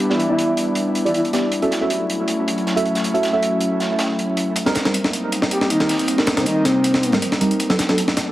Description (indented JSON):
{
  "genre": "drum and bass, jungle",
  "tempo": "158 BPM",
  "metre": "4/4",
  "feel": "straight",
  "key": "unclear",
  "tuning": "A4 = 441 Hz",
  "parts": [
    { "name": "airy breathy pad", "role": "sustained chords", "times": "0.0-8.3 s", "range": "F#3 to E4", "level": "-22 LUFS", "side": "equal", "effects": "chorus" },
    { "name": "crunchy breakbeat drum kit", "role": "drums", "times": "0.0-8.3 s", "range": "hi-hat, snare drum", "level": "-28 LUFS", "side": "right 1 dB", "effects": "high-pass filter on hats, high-pass filter on snare, high-pass filter on room" },
    { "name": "breathy flute-like synth lead", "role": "melody", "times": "0.1-1.2, 5.5-7.2 s", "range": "C4 to G4", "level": "-22 LUFS", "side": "equal", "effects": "chorus, dub echo" },
    { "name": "deep mellow chord stab", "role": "stabs", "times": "0.1-8.0 s", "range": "F#3 to E5", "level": "-22 LUFS", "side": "right 1 dB", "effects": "chorus, dub echo" },
    { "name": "breakbeat sampler-style drum kit", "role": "drums", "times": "4.6-8.3 s", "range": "hi-hat, snare drum", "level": "-21 LUFS", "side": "equal", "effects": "none" }
  ],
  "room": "wet plate reverb, RT60 1.4 s",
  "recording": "heavily compressed radio sound, multiband compression, vinyl crackle",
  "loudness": "-17 LUFS",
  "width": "side -15 dB against mid",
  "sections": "0.0-8.3 A section",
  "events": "none",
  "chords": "0.0 Em7; 1.5 F#m7; 4.6 Cm7; 7.6 Bm7"
}